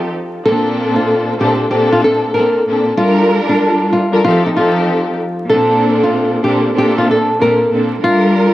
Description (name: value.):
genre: hip hop.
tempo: 95 BPM.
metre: 4/4.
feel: swing 63% on 16ths.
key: Bb major.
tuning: A4 = 440 Hz.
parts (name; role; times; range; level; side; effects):
flamenco guitar; melody; 0.0-8.5 s; D4 to Bb4; -15 LUFS; equal; high-pass filter, low-pass filter, analog delay.
warm studio string section; accompaniment; 0.0-8.5 s; Bb2 to Bb4; -13 LUFS; equal; high-pass filter, low-pass filter.
room: light reverb, small room reverb.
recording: dark, warm production, vinyl crackle.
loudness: -11 LUFS.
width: side -15 dB against mid.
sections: 0.0-8.5 A section.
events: none.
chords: 0.5 Bbmaj7; 3.0 Gm7; 4.2 F7; 5.5 Bbmaj7; 8.0 Gm7.